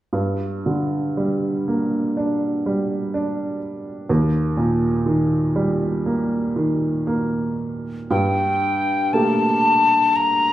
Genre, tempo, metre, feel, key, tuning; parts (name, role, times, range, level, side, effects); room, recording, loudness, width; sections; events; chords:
celtic folk, Celtic slow air; 57-63 BPM; 4/4; rubato; G minor; A4 = 440 Hz
clear upright piano; accompaniment; 0.1-10.5 s; Eb2 to G4; -20 LUFS; right 1 dB
breathy mellow mid whistle; melody; 8.1-10.5 s; G5 to Bb5; -17 LUFS; left 2 dB
moderate recital hall reverb, RT60 1.4 s; minimal, uncompressed stereo recording; -18 LUFS; side -13 dB against mid
0.1-8.1 A section; 8.1-10.5 B section
0.1 Gm; 4.1 Eb; 8.1 Gmadd9